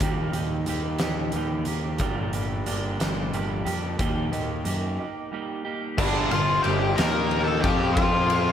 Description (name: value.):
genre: quiet-loud alternative rock.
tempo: 60 BPM (dotted quarters).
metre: 6/8.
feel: straight.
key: G minor.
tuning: A4 = 440 Hz.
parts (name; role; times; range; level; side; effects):
clean electric guitar; arpeggios; 0.0-6.0 s; G2 to G4; -30 LUFS; right 4 dB; lush chorus, analog delay.
fuzz picked electric bass; bass; 0.0-8.5 s; G1 to F#2; -28 LUFS; equal; overdrive.
oversized low-tuned drum kit; drums; 0.0-8.4 s; crash cymbal, hi-hat, kick drum, ride cymbal, snare drum; -28 LUFS; left 1 dB; none.
octave-fuzz lead guitar; melody; 6.0-8.5 s; D4 to Bb5; -25 LUFS; left 2 dB; distortion.
fuzz guitar; riff; 6.0-8.5 s; G2 to F4; -25 LUFS; left 1 dB; distortion, slapback echo.
room: moderate lush hall reverb, RT60 1.7 s, small room reverb.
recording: big arena sound.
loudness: -23 LUFS.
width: side -9 dB against mid.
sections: 0.0-6.0 A section; 6.0-8.5 B section.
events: break 5.0-6.0.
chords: 0.0 Eb; 2.0 Gm; 4.0 Eb; 6.0 G5; 7.0 Eb5; 7.6 F5.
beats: | 0.01 1.01 | 2.01 3.00 | 3.99 4.99 | 5.98 6.97 | 7.96.